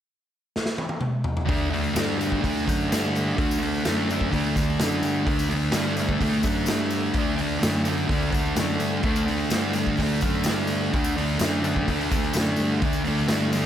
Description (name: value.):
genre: garage rock duo or trio.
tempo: 127 BPM.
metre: 4/4.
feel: straight.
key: D major.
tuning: A4 = 440 Hz.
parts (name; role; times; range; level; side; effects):
raw garage drum kit; drums; 0.6-13.6 s; hi-hat, kick drum, snare drum, toms; -27 LUFS; equal; none.
thick fuzz guitar; riff; 1.5-13.7 s; D3 to D4; -24 LUFS; equal; distortion.
growling picked electric bass; bass; 1.5-13.7 s; D2 to G2; -30 LUFS; equal; overdrive.
tambourine; percussion; 1.8-13.6 s; none; -39 LUFS; left 5 dB; none.
room: light reverb, studio reverb.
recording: none.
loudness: -22 LUFS.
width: side -10 dB against mid.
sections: 0.0-1.5 A section; 1.5-13.7 B section.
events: drum fill 0.6-1.5.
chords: 0.0 N.C.; 1.5 D.